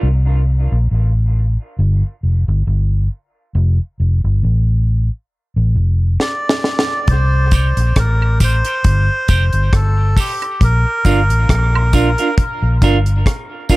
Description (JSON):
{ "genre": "dub reggae", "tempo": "68 BPM", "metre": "4/4", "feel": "swing 56% on 16ths", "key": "C dorian", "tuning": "A4 = 440 Hz", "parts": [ { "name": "vintage muted fingered electric bass", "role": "bass", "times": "0.0-13.2 s", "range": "F1 to C2", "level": "-13 LUFS", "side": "equal", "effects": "none" }, { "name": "melodica", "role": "melody", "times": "6.2-12.3 s", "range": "G4 to D5", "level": "-20 LUFS", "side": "equal", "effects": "dub echo" }, { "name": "deep reggae drum kit", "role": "drums", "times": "6.2-13.8 s", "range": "hi-hat, kick drum, rim click, snare drum", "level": "-16 LUFS", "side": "equal", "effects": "none" }, { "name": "semi-hollow electric guitar", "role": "accompaniment", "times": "7.5-13.8 s", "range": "D4 to C5", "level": "-21 LUFS", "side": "right 4 dB", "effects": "high-pass filter, low-pass filter, dub echo" }, { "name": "tambourine and woodblock", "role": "percussion", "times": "7.5-13.8 s", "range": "none", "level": "-28 LUFS", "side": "right 7 dB", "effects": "high-pass filter on perc, dub echo" } ], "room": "little or no reverb", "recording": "none", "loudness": "-13 LUFS", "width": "side -20 dB against mid", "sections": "0.0-7.1 A section; 7.1-13.8 B section", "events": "break 0.0-7.1; drum fill 6.2-7.1", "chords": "0.0 C5; 3.6 F; 7.1 Cm; 10.6 Bb" }